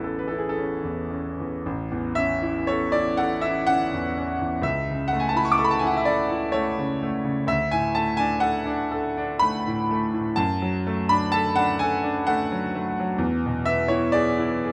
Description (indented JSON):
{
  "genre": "classical, romantic nocturne for solo piano",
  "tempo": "62 BPM",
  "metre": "3/4",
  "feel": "uneven beats, rubato",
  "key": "A major",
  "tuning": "A4 = 440 Hz",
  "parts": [
    { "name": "bright grand piano", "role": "solo", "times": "0.0-14.7 s", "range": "A1 to D6", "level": "-24 LUFS", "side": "equal", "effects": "none" }
  ],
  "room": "moderate recital hall reverb, RT60 1.4 s",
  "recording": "close, detailed microphones",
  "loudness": "-24 LUFS",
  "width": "mono",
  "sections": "0.0-1.7 A section; 1.7-14.7 B section",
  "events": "none",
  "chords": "0.0 A; 4.6 A/C#; 7.5 D; 10.4 D/F#; 13.2 E7"
}